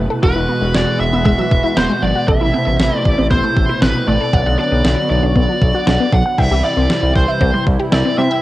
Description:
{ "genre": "synth-pop", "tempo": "117 BPM", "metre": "4/4", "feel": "straight", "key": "unclear", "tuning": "A4 = 440 Hz", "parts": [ { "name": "chorused pulse-width pad", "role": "sustained chords", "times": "0.0-8.4 s", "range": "B2 to F#4", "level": "-20 LUFS", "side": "equal", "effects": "lush chorus, cassette tape" }, { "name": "resonant blip pluck", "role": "arpeggios", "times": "0.0-8.4 s", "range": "F#3 to G5", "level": "-20 LUFS", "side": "equal", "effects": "phaser, cassette tape, tape echo" }, { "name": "smooth synth bass", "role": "bass", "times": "0.0-8.3 s", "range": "E1 to C3", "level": "-18 LUFS", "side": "equal", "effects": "none" }, { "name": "smooth overdriven lead guitar", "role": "melody", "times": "0.2-8.4 s", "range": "B4 to F#5", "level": "-19 LUFS", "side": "equal", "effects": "cassette tape, tape echo" }, { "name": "detuned 8-bit digital drum machine", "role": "drums", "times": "0.2-8.0 s", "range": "crash cymbal, kick drum, snare drum", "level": "-18 LUFS", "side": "equal", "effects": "cassette tape" } ], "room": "moderate spring reverb, RT60 1.3 s", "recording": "home recording on cassette", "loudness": "-12 LUFS", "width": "side -16 dB against mid", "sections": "0.0-6.4 A section; 6.4-8.4 B section", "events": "none", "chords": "0.2 Eadd9; 2.3 Amadd9; 4.3 Bm; 6.4 C" }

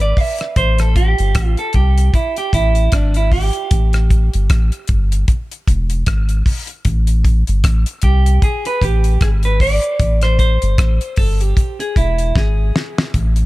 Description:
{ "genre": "roots reggae", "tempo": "76 BPM", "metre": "4/4", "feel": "swing 58% on 16ths", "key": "A minor", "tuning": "A4 = 439 Hz", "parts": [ { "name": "clean electric guitar", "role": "accompaniment", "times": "0.0-13.1 s", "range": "D4 to E5", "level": "-20 LUFS", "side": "right 3 dB", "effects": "tape echo" }, { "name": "soft dub sub bass", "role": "bass", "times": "0.0-13.5 s", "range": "E1 to C2", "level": "-14 LUFS", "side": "equal", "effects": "none" }, { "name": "damped 70s drum kit", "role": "drums", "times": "0.0-13.5 s", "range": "hi-hat, kick drum, rim click, snare drum", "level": "-17 LUFS", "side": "equal", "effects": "none" } ], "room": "little or no reverb", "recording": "none", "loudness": "-13 LUFS", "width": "side -18 dB against mid", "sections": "0.0-13.1 A section", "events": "clean electric guitar solo 0.0-13.1; drum fill 12.4-13.1", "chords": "0.0 E; 0.6 Am7; 2.1 E7#9; 3.7 Gsus2; 5.3 E; 6.9 Am7; 8.4 G#dim; 10.0 Am7; 11.6 E" }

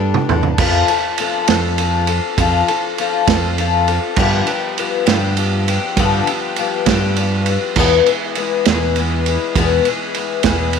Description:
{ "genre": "folk rock and heartland rock", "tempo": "67 BPM (dotted quarters)", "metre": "6/8", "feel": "straight", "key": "unclear", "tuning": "A4 = 437 Hz", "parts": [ { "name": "picked twelve-string acoustic guitar", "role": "accompaniment", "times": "0.0-10.8 s", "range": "E2 to A4", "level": "-17 LUFS", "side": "left 10 dB", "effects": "none" }, { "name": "picked electric bass", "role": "bass", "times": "0.0-10.8 s", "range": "E2 to G2", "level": "-19 LUFS", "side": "right 2 dB", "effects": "none" }, { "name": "natural country drum kit", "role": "drums", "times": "0.1-10.8 s", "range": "crash cymbal, kick drum, ride cymbal, snare drum, toms", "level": "-18 LUFS", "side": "right 8 dB", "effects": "none" } ], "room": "light reverb, studio reverb", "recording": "1960s-style stereo with parts hard left and right", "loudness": "-14 LUFS", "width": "side -6 dB against mid", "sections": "0.6-10.8 A section", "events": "drum fill 0.0-0.6", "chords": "0.0 Gadd9; 0.6 F; 4.2 G7; 7.8 E" }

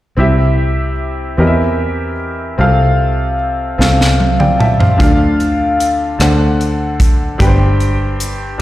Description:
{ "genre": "slow gospel", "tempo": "50 BPM (dotted quarters)", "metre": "6/8", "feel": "straight", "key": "C major", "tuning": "A4 = 440 Hz", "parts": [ { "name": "bright upright piano", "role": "accompaniment", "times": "0.2-8.6 s", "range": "G2 to A5", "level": "-15 LUFS", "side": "left 1 dB", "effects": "slapback echo" }, { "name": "fingered electric bass", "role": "bass", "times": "0.2-8.6 s", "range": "G1 to E2", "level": "-15 LUFS", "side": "equal", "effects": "none" }, { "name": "crisp fusion drum kit", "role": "drums", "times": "3.8-8.4 s", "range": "hi-hat, kick drum, rim click, snare drum, toms", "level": "-14 LUFS", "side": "right 1 dB", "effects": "none" } ], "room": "light reverb, small room ambience", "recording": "live gig heard through the venue's PA, recital hall reverb", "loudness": "-11 LUFS", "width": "side -15 dB against mid", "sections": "0.2-8.6 A section", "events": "drum fill 3.8-5.0", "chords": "0.2 C; 1.4 C7/E; 2.6 F/C; 5.0 Dm; 6.2 D7; 7.4 Gsus4" }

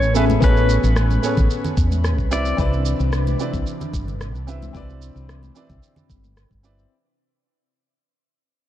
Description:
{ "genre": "sunset chillout", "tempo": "111 BPM", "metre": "4/4", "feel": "straight", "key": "unclear", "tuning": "A4 = 440 Hz", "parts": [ { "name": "pedal steel guitar", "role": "melody", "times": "0.0-2.6 s", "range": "B4 to D5", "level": "-26 LUFS", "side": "left 2 dB", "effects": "tape echo, shimmer reverb" }, { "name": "clear baby grand piano", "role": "accompaniment", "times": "0.0-6.9 s", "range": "B3 to E5", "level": "-26 LUFS", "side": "right 1 dB", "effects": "auto-pan, shimmer reverb" }, { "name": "airy breathy pad", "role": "sustained chords", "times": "0.0-6.9 s", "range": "A2 to B4", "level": "-26 LUFS", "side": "left 1 dB", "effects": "chorus, phaser" }, { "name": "woody fretless electric bass", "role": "bass", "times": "0.0-6.8 s", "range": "G1 to E2", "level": "-20 LUFS", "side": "equal", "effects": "tube saturation" }, { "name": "electronic shaker and rim click", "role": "drums", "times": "0.0-6.9 s", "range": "none", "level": "-32 LUFS", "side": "right 2 dB", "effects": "none" }, { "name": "congas", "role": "percussion", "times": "0.3-6.3 s", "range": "none", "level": "-30 LUFS", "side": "left 1 dB", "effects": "none" }, { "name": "electronic kick drum", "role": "drums", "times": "0.4-6.6 s", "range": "none", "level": "-21 LUFS", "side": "equal", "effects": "none" } ], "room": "light reverb", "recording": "dark, warm production", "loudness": "-17 LUFS", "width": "side -12 dB against mid", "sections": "0.0-6.9 A section", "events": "fade-out 0.0-6.9", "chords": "0.0 Amaj9; 2.3 Cmaj9" }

